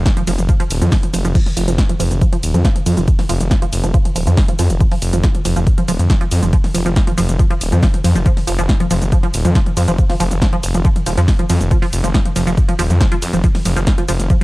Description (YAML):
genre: driving peak-time techno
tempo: 139 BPM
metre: 4/4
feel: straight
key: unclear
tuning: A4 = 440 Hz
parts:
  - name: detuned saw bass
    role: bass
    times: 0.0-14.3 s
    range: Eb1 to F2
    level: -16 LUFS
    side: equal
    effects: sidechain pumping
  - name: electronic kick drum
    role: drums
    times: 0.1-14.4 s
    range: none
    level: -14 LUFS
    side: equal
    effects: none
  - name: punchy analog drum machine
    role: drums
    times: 0.1-14.4 s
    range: crash cymbal, hi-hat, ride cymbal, shaker, snare drum, toms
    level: -22 LUFS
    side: left 1 dB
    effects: sidechain pumping on hats, sidechain pumping on cymbals, sidechain pumping on perc, sidechain pumping on toms
  - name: tight sequenced synth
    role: riff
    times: 0.2-14.4 s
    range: F3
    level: -21 LUFS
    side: right 2 dB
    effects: chorus, phaser, sidechain pumping, tape echo
room: digital ambience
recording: dry, gritty hardware recording, cassette tape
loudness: -13 LUFS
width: side -20 dB against mid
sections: 0.0-14.4 A section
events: none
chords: 0.0 F5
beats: 0.06 0.49 0.92 | 1.35 1.78 2.21 2.65 | 3.08 3.51 3.94 4.37 | 4.80 5.24 5.67 6.10 | 6.53 6.96 7.39 7.83 | 8.26 8.69 9.12 9.55 | 9.98 10.42 10.85 11.28 | 11.71 12.14 12.57 13.01 | 13.44 13.87 14.30